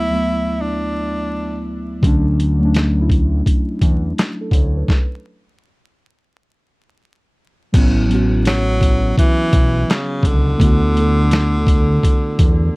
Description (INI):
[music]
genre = lo-fi hip hop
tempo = 84 BPM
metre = 4/4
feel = swing 62% on 16ths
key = unclear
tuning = A4 = 441 Hz
[part]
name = breathy tenor saxophone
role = melody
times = 0.0-1.7, 8.5-12.8 s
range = C#3 to E4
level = -21 LUFS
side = equal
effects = none
[part]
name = muted felt-like synth keys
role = accompaniment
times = 0.0-12.8 s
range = D2 to C#5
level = -20 LUFS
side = equal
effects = chorus
[part]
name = fat analog bass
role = bass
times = 2.0-12.7 s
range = A1 to E2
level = -17 LUFS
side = equal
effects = none
[part]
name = boom bap sampler-style drum kit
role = drums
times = 2.0-12.6 s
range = crash cymbal, hi-hat, kick drum, snare drum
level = -15 LUFS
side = equal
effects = none
[sound]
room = little or no reverb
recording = dry, gritty hardware recording, vinyl crackle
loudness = -14 LUFS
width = side -25 dB against mid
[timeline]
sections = 0.0-7.7 A section; 7.7-12.8 B section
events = stop 4.9-7.7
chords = 0.0 D6; 2.0 Dmaj9; 4.9 N.C.; 7.7 A6; 10.6 D6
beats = 0.60 1.31 | 2.03 2.74 3.46 4.17 | 4.88 5.60 6.31 7.03 | 7.74 8.46 9.17 9.88 | 10.60 11.31 12.03 12.74